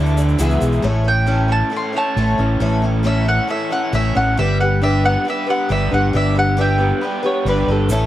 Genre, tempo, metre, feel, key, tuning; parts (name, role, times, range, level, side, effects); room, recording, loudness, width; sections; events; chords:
folk rock and heartland rock; 136 BPM; 4/4; straight; A mixolydian; A4 = 439 Hz
picked twelve-string acoustic guitar; accompaniment; 0.0-8.1 s; A2 to E5; -22 LUFS; left 3 dB
raw garage guitar; riff; 0.0-8.1 s; E2 to B4; -22 LUFS; right 1 dB; overdrive, spring reverb
fingered electric bass; bass; 0.0-8.1 s; G1 to D2; -17 LUFS; equal
tube shaker; percussion; 0.1-0.8, 7.9-8.0 s; -35 LUFS; right 4 dB
mandolin; melody; 1.1-7.4 s; C#5 to C6; -21 LUFS; right 1 dB; analog delay
clean electric guitar; second line; 7.3-8.1 s; A4 to C#5; -22 LUFS; right 2 dB; analog chorus
small room ambience; dark, warm production; -15 LUFS; side -13 dB against mid
0.8-8.1 A section
mandolin solo 0.8-8.1
0.4 Eadd9; 0.8 A; 4.4 G